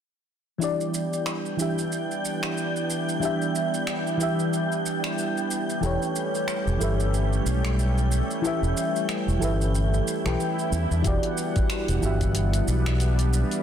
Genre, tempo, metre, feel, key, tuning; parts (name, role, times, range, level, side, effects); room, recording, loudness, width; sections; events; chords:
sunset chillout; 92 BPM; 4/4; swing 58% on 16ths; E dorian; A4 = 441 Hz
mellow FM electric piano; accompaniment; 0.6-13.6 s; E3 to G5; -28 LUFS; left 1 dB; chorus, phaser, auto-pan, cassette tape, low-pass filter, ping-pong delay
lush unison pad; sustained chords; 0.6-13.6 s; E3 to G5; -30 LUFS; right 1 dB; chorus
deep house drum kit; drums; 0.6-13.6 s; finger snaps, hi-hat, shaker; -34 LUFS; right 2 dB; overdrive, soft clipping on snare
wind-like tuned noise texture; texture; 1.1-11.1 s; G5 to G6; -35 LUFS; equal; built-in reverb
fingered electric bass with an envelope filter; bass; 5.8-13.4 s; E1 to E2; -23 LUFS; equal
swell; sound effects; 10.0-11.0 s; -36 LUFS; right 6 dB
electronic kick drum; drums; 11.0-12.3 s; -26 LUFS; equal
moderate lush hall reverb, RT60 1.7 s, digital ambience; dense, heavily limited modern master; -23 LUFS; side -9 dB against mid
0.6-11.0 A section; 11.0-13.6 B section
swell 10.0-11.0; filter sweep on FM electric piano 11.0-13.6
0.6 Em7; 5.8 A9/E; 10.7 Em7; 11.0 Em9